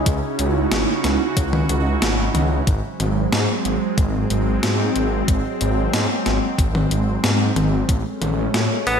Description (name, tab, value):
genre	synthwave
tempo	92 BPM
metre	4/4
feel	straight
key	unclear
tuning	A4 = 440 Hz
part	phased analog pad	sustained chords	0.0-9.0 s	C#3 to F#4	-22 LUFS	right 2 dB	phaser, chorus, sidechain pumping
part	wide detuned saw bass	bass	0.1-9.0 s	G#1 to A2	-22 LUFS	equal	chorus
part	electronic kick drum	drums	0.1-8.0 s	none	-19 LUFS	equal	overdrive, small room ambience
part	gated 80s digital drum machine	drums	0.1-9.0 s	hi-hat, snare drum, toms	-23 LUFS	left 1 dB	gated reverb, gated reverb snare, overdrive, small room ambience, slapback echo
part	warm tenor saxophone	melody	8.9-9.0 s	B3	-17 LUFS	equal	none
room	moderate lush hall reverb, RT60 1.7 s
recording	big arena sound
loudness	-17 LUFS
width	side -7 dB against mid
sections	0.0-9.0 A section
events	none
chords	0.0 C#madd9; 2.7 G#7; 7.9 Amaj7